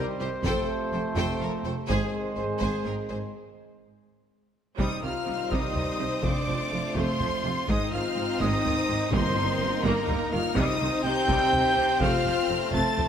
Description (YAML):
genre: cinematic, epic orchestral film score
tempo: 83 BPM (dotted quarters)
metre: 6/8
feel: straight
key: C minor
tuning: A4 = 441 Hz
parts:
  - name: rich symphonic violin section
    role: melody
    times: 0.0-13.1 s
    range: Eb5 to A6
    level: -34 LUFS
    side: left 3 dB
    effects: none
  - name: bright symphonic violin section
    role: second line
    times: 0.0-13.1 s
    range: C4 to C5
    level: -34 LUFS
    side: left 3 dB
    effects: none
  - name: bright symphonic viola section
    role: accompaniment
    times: 0.0-13.1 s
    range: C3 to A4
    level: -35 LUFS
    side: right 1 dB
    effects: none
  - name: clear trombone section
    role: sustained chords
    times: 0.0-13.1 s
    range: C3 to C4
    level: -34 LUFS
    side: right 2 dB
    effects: none
  - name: mellow French horn section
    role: sustained chords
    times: 0.0-13.1 s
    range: Bb3 to A4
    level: -34 LUFS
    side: left 5 dB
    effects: none
  - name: dark trumpet section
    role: stabs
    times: 0.0-13.1 s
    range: Bb4 to A5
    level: -30 LUFS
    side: right 1 dB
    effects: none
  - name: clear symphonic double bass section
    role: bass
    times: 0.0-13.1 s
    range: F1 to C2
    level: -33 LUFS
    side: right 2 dB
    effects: none
  - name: rich symphonic cello section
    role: bass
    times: 0.0-13.1 s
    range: C2 to C3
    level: -34 LUFS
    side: right 2 dB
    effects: none
  - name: taiko ensemble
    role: drums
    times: 0.5-13.1 s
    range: none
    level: -33 LUFS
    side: equal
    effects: none
  - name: timpani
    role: percussion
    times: 9.1-9.8 s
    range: G2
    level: -33 LUFS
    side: left 1 dB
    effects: none
room: moderate scoring stage reverb, RT60 2.0 s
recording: none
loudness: -24 LUFS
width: side -8 dB against mid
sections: 0.0-4.8 A section; 4.8-13.1 B section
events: build-up 0.0-4.8; break 3.3-4.8; drum fill 4.1-4.8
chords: 0.4 Fadd9; 1.9 Ab; 3.3 N.C.; 4.8 Cm; 6.2 F; 7.7 Ab; 9.1 Eb/G; 10.6 Cm; 12.0 F